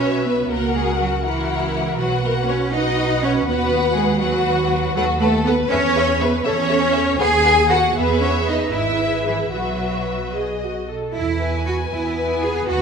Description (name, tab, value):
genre	quick classical-period movement for string orchestra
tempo	73-82 BPM (dotted quarters)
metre	6/8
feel	rubato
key	B major, E major from 5.0 s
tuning	A4 = 440 Hz
part	warm symphonic violin section	melody	0.0-12.8 s	D#5 to G#5	-28 LUFS	left 6 dB	none
part	warm symphonic violin section	second line	0.0-12.8 s	E4 to G#5	-22 LUFS	left 3 dB	none
part	warm symphonic viola section	accompaniment	0.0-12.8 s	B3 to C#5	-25 LUFS	right 1 dB	none
part	rich symphonic cello section	bass	0.0-12.8 s	E3 to G#4	-22 LUFS	right 3 dB	none
part	warm symphonic double bass section	bass	0.0-12.8 s	G#1 to E2	-25 LUFS	right 3 dB	none
room	wet scoring stage reverb, RT60 1.8 s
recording	minimal, uncompressed stereo recording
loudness	-17 LUFS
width	side -6 dB against mid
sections	0.0-11.2 A section; 11.2-12.8 B section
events	none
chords	0.5 F#7/C#; 2.0 B; 3.5 B/D#; 5.0 B7/D#; 5.7 E; 6.5 A/E; 7.2 B7/D#; 8.0 E; 8.7 E/G#; 9.5 Bsus4; 10.3 B; 11.2 E